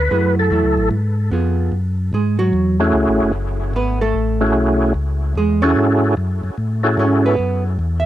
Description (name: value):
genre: soul jazz organ trio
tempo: 148 BPM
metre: 4/4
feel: swing 64% on 8ths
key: F# minor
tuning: A4 = 440 Hz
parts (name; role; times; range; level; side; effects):
- percussive tonewheel organ; melody; 0.0-7.4 s; A3 to B4; -19 LUFS; equal; slow rotary speaker, overdrive, chorus vibrato, tape echo
- mellow tonewheel organ; bass; 0.0-8.1 s; F#1 to A2; -19 LUFS; left 1 dB; slow rotary speaker
- vintage hollow-body jazz guitar; accompaniment; 0.1-8.1 s; F#3 to E5; -18 LUFS; right 3 dB; none
room: little or no reverb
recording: dry, close 1970s-style studio recording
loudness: -15 LUFS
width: side -13 dB against mid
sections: 0.0-1.7 A section; 1.7-8.1 A section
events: tonewheel organ solo 0.0-1.7; hollow-body jazz guitar solo 1.7-8.1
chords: 0.1 F#m9; 0.9 Fdim; 1.7 F#m9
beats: | 0.11 0.52 0.92 1.32 | 1.73 2.13 2.54 2.94 | 3.35 3.75 4.15 4.56 | 4.96 5.37 5.77 6.17 | 6.58 6.98 7.39 7.79